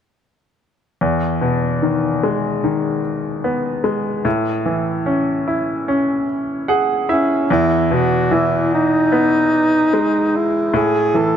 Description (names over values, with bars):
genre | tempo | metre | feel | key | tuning
pop | 74 BPM | 4/4 | straight | E major | A4 = 440 Hz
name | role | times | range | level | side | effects
bright grand piano | accompaniment | 1.0-11.4 s | E2 to F#5 | -17 LUFS | left 1 dB | none
mellow alto saxophone | melody | 7.1-11.4 s | C#4 to A4 | -16 LUFS | right 1 dB | none
room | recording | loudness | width
moderate lush hall reverb, RT60 2.5 s | none | -15 LUFS | side -8 dB against mid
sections
1.0-7.5 A section; 7.5-11.4 B section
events
grand piano fill 6.3-7.5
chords
1.0 Emaj7; 4.3 Amaj7; 7.5 Emaj7; 10.7 Amaj7(no3)